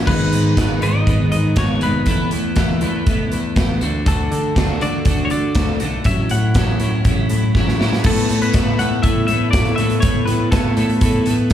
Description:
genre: indie rock.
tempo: 120 BPM.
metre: 4/4.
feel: straight.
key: unclear.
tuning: A4 = 441 Hz.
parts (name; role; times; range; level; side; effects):
twelve-string electric guitar; riff; 0.0-11.5 s; G#2 to A4; -19 LUFS; equal; double-tracked left and right, slapback echo.
modern bright picked electric bass; bass; 0.0-11.5 s; E1 to D3; -21 LUFS; equal; none.
semi-hollow electric guitar; melody; 0.1-11.5 s; A4 to F#5; -25 LUFS; left 4 dB; lush chorus, slapback echo.
big rock drum kit; drums; 0.1-11.5 s; crash cymbal, hi-hat, kick drum, snare drum; -19 LUFS; equal; none.
room: small room ambience.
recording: live gig heard through the venue's PA, club reverb.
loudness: -15 LUFS.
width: side -10 dB against mid.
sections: 0.1-8.0 A section; 8.0-11.5 B section.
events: drum fill 7.5-8.0.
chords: 0.1 G#m; 2.1 Esus4; 3.8 D; 6.1 A6; 8.0 Asus2.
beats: | 0.07 0.57 1.07 1.57 | 2.07 2.56 3.06 3.56 | 4.06 4.56 5.06 5.56 | 6.05 6.55 7.05 7.55 | 8.04 8.54 9.04 9.53 | 10.03 10.52 11.02 11.51.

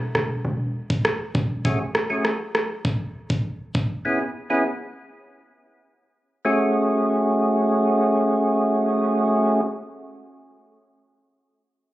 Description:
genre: dancehall.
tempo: 100 BPM.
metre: 4/4.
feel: straight.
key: F# minor.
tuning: A4 = 435 Hz.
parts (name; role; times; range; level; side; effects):
hard-hitting 808-style bass; bass; 0.0-1.6 s; E1; -25 LUFS; equal; none.
island pop drum kit; drums; 0.1-3.9 s; kick drum, rim click; -23 LUFS; equal; overdrive.
percussive tonewheel organ; accompaniment; 1.6-9.6 s; A3 to G#4; -20 LUFS; equal; overdrive, chorus vibrato, slow rotary speaker.
room: light reverb.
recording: recorded on a phone in the room, club reverb.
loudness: -20 LUFS.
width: side -15 dB against mid.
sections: 0.0-6.4 A section; 6.4-8.8 B section.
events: none.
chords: 0.0 N.C.; 1.6 F#madd9; 4.0 E6; 6.4 F#madd9.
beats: 0.45 1.05 | 1.65 2.25 2.85 3.45 | 4.05 4.65 5.25 5.85 | 6.45 7.05 7.65 8.25.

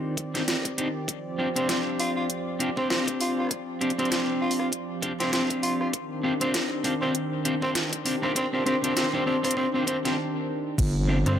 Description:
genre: glitch hop.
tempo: 99 BPM.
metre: 4/4.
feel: swing 58% on 16ths.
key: C minor.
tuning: A4 = 439 Hz.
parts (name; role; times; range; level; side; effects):
warm analog pad; sustained chords; 0.0-11.4 s; C3 to D5; -32 LUFS; right 1 dB; chorus, sidechain pumping.
electric guitar at the edge of break-up; stabs; 0.0-11.4 s; C4 to G4; -28 LUFS; left 1 dB; sidechain pumping, ping-pong delay.
electronic kick drum; drums; 0.2-10.9 s; none; -31 LUFS; equal; overdrive, high-pass filter on kick, high-pass filter on room.
pop drum kit; drums; 0.2-11.4 s; crash cymbal, hi-hat, rim click, snare drum; -29 LUFS; equal; overdrive, high-pass filter on hats, high-pass filter on snare, high-pass filter on cymbals, high-pass filter on room.
growling tenor saxophone; melody; 1.6-11.3 s; C4 to F4; -31 LUFS; equal; ping-pong delay.
wobble bass; bass; 10.8-11.2 s; G1; -23 LUFS; equal; chorus, overdrive.
slap-like FM bass; bass; 11.3-11.4 s; G1; -22 LUFS; equal; none.
room: light reverb, digital ambience.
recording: none.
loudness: -24 LUFS.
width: side -9 dB against mid.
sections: 0.0-10.8 A section.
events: build-up 0.0-10.8; break 10.2-10.8.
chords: 0.0 Cmadd9; 1.1 G7sus4; 5.9 Cmadd9; 10.8 G7sus4.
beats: 0.48 | 1.09 1.69 2.30 2.90 | 3.51 4.12 4.72 5.33 | 5.93 6.54 7.15 7.75 | 8.36 8.97 9.57 10.18 | 10.78 11.39.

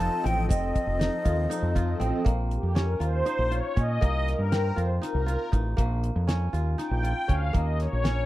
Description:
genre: progressive instrumental, band music in an uneven meter.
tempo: 238 BPM (eighths).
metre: 7/8.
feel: straight.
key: Bb dorian.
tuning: A4 = 439 Hz.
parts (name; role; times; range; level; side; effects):
bright baroque flute; melody; 0.0-2.0 s; Eb5 to A5; -30 LUFS; left 1 dB; none.
brassy analog pad; accompaniment; 0.0-8.3 s; F3 to G5; -30 LUFS; left 1 dB; chorus.
kora; arpeggios; 0.0-8.3 s; Bb3 to F4; -33 LUFS; right 1 dB; none.
growling fingered electric bass; bass; 0.0-8.2 s; F1 to Bb2; -26 LUFS; equal; overdrive.
damped 70s drum kit; drums; 0.0-8.2 s; hi-hat, kick drum, snare drum; -26 LUFS; equal; none.
tube shaker; percussion; 0.5-1.7 s; none; -44 LUFS; right 13 dB; none.
room: studio reverb.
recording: dry, close 1970s-style studio recording.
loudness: -24 LUFS.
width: side -16 dB against mid.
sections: 0.0-2.3 A section; 2.3-8.3 B section.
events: analog synth pad solo 2.3-8.3.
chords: 0.0 F7; 2.3 Bbm; 4.0 Cm7; 5.8 Bbm; 7.5 Eb7(no3).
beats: 0.24 | 0.49 0.74 0.99 1.25 1.50 1.75 2.00 | 2.25 2.51 2.76 3.01 3.26 3.51 3.77 | 4.02 4.27 4.52 4.77 5.03 5.28 5.53 | 5.78 6.03 6.29 6.54 6.79 7.04 7.29 | 7.54 7.80 8.05.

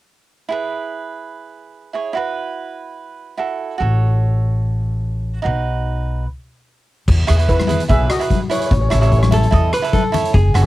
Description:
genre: calypso.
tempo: 146 BPM.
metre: 4/4.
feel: swing 54% on 16ths.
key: E major.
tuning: A4 = 439 Hz.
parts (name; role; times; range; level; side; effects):
cavaquinho; accompaniment; 0.5-10.6 s; D#4 to D#5; -23 LUFS; right 6 dB; cassette tape.
upright bass; bass; 3.8-10.7 s; F#1 to E2; -16 LUFS; equal; none.
street-band drum kit; drums; 7.1-10.7 s; crash cymbal, hi-hat, kick drum, rim click; -19 LUFS; equal; cassette tape.
steel pan; melody; 7.5-9.3 s; E4 to E5; -21 LUFS; left 1 dB; cassette tape.
congas; percussion; 7.6-10.2 s; none; -22 LUFS; left 7 dB; none.
vintage hollow-body jazz guitar; second line; 9.3-10.6 s; G#4 to B4; -20 LUFS; equal; cassette tape.
room: little or no reverb.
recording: home recording on cassette.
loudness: -15 LUFS.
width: side -16 dB against mid.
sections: 0.5-7.1 A section; 7.1-10.7 B section.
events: stop 6.3-7.1.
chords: 0.5 E; 2.2 B7sus4; 3.8 F#m/A; 5.4 B; 7.1 E; 8.7 A.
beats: | 0.51 0.92 1.33 1.75 | 2.16 2.57 2.98 3.39 | 3.80 4.21 4.62 5.03 | 5.45 5.86 6.26 6.67 | 7.08 7.49 7.90 8.31 | 8.72 9.12 9.53 9.94 | 10.35.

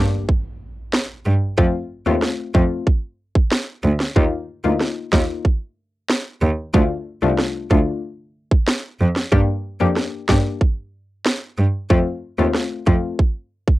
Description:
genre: dancehall.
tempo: 93 BPM.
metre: 4/4.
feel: straight.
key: G minor.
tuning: A4 = 440 Hz.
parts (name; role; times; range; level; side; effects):
hollow square pluck; accompaniment; 0.0-13.2 s; A3 to G4; -23 LUFS; left 6 dB; chorus, cassette tape.
clear cello; bass; 0.0-12.9 s; C2 to G2; -19 LUFS; right 1 dB; none.
impact; sound effects; 0.0-1.6 s; none; -39 LUFS; right 1 dB; none.
island pop drum kit; drums; 0.3-13.8 s; kick drum, rim click, snare drum; -18 LUFS; right 1 dB; cassette tape.
room: light reverb.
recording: home recording on cassette.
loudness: -18 LUFS.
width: side -17 dB against mid.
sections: 0.0-13.8 A section.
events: impact 0.0-1.6.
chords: 0.0 Gm; 1.6 F; 4.2 Ebsus2; 6.7 Dm; 9.3 Gm; 11.9 F.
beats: 0.29 0.94 | 1.58 2.23 2.87 3.52 | 4.16 4.81 5.45 6.10 | 6.74 7.39 8.03 8.68 | 9.32 9.97 10.61 11.26 | 11.90 12.55 13.19.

